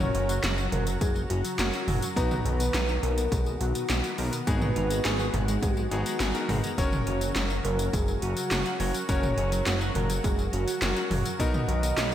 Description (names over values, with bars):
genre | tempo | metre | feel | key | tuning
synthwave | 104 BPM | 4/4 | straight | unclear | A4 = 439 Hz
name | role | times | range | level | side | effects
soft octave-layered synth lead | melody | 0.0-12.1 s | Gb4 to D#5 | -32 LUFS | equal | chorus, phaser, tape echo, slapback echo
lush unison pad | sustained chords | 0.0-12.1 s | Db3 to Bb5 | -35 LUFS | right 1 dB | chorus, sidechain pumping
semi-hollow electric guitar | riff | 0.0-12.1 s | B2 to Ab4 | -37 LUFS | equal | lush chorus, tape echo, slapback echo
bright electric grand piano | stabs | 0.0-12.1 s | B3 to A#5 | -35 LUFS | left 3 dB | slapback echo
chorused synth bass | bass | 0.0-12.1 s | Gb1 to B1 | -29 LUFS | equal | none
80s electronic pad drums | drums | 0.0-12.1 s | handclaps, hi-hat, snare drum, tambourine, toms | -31 LUFS | equal | gated reverb on snare and toms, overdrive
electronic kick drum | drums | 1.0-11.5 s | none | -29 LUFS | equal | overdrive
room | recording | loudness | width
moderate lush hall reverb, RT60 2.1 s | big arena sound | -24 LUFS | side -11 dB against mid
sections
0.0-12.1 A section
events
none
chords
0.0 Gb; 2.2 Bmaj7; 4.5 Abm7; 6.8 Gb; 11.4 Bmaj7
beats
0.43 1.01 1.59 | 2.17 2.74 3.32 3.90 | 4.47 5.05 5.63 6.20 | 6.78 7.36 7.93 8.51 | 9.09 9.66 10.24 10.82 | 11.40 11.97